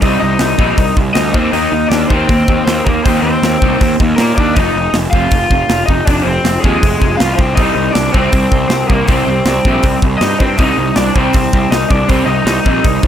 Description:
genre	punk rock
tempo	159 BPM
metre	4/4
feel	straight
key	C minor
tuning	A4 = 440 Hz
part	raw garage guitar	melody	0.0-13.0 s	Ab3 to F5	-16 LUFS	left 2 dB	overdrive
part	raw garage guitar	riff	0.0-13.1 s	F2 to Eb4	-17 LUFS	right 1 dB	overdrive
part	fuzz picked electric bass	bass	0.0-13.1 s	F1 to Bb2	-17 LUFS	equal	overdrive
part	tight metal drum kit	drums	0.0-13.1 s	hi-hat, kick drum, snare drum	-15 LUFS	equal	none
room	little or no reverb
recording	none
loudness	-10 LUFS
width	side -10 dB against mid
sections	0.0-13.1 A section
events	none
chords	0.0 Cm; 1.4 Eb5; 4.6 Fm; 7.6 Cm

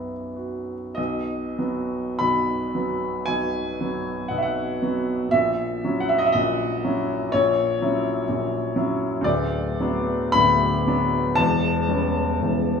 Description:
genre	classical, romantic nocturne for solo piano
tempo	46-64 BPM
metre	4/4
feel	rubato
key	B minor from 9.2 s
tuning	A4 = 444 Hz
part	warm upright piano	solo	0.0-12.8 s	D1 to B5	-21 LUFS	left 1 dB	none
room	moderate recital hall reverb, RT60 1.5 s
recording	small room ambience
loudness	-21 LUFS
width	side -6 dB against mid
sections	1.0-12.8 A section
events	none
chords	0.0 B5; 5.3 F#7/A#; 9.2 Bm/D; 11.4 C#m7b5/E

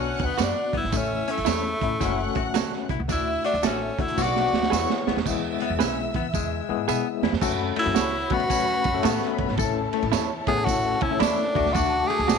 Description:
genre	uptempo 1960s-style soul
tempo	111 BPM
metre	4/4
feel	swing 65% on 8ths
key	unclear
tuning	A4 = 440 Hz
part	bright tenor saxophone	melody	0.0-12.4 s	A3 to G#4	-26 LUFS	equal	none
part	warm studio string section	second line	0.0-12.4 s	E4 to F#6	-32 LUFS	equal	none
part	overdriven tine electric piano	accompaniment	0.0-12.4 s	G#3 to B4	-29 LUFS	left 16 dB	medium tremolo
part	semi-hollow electric guitar	riff	0.0-12.2 s	G#3 to A4	-32 LUFS	left 18 dB	none
part	upright bass	bass	0.0-12.4 s	F#1 to F#3	-31 LUFS	equal	none
part	crunchy breakbeat drum kit	drums	0.2-12.4 s	crash cymbal, hi-hat, kick drum, ride cymbal, snare drum	-28 LUFS	right 7 dB	none
part	semi-hollow electric guitar	stabs	0.4-12.4 s	E4 to E5	-29 LUFS	right 16 dB	none
part	tambourine	percussion	0.4-12.4 s	none	-36 LUFS	right 18 dB	none
room	small room reverb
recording	1960s-style stereo with parts hard left and right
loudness	-22 LUFS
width	side -6 dB against mid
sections	0.0-5.3 A section; 5.3-7.4 B section; 7.4-12.4 C section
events	tenor saxophone solo 0.0-5.3; drum fill 4.2-5.3, 6.3-7.4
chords	0.0 Bm; 0.9 A; 2.0 F#m; 3.1 D; 4.2 Bm; 4.7 E; 7.4 F#m; 9.6 A; 11.5 D

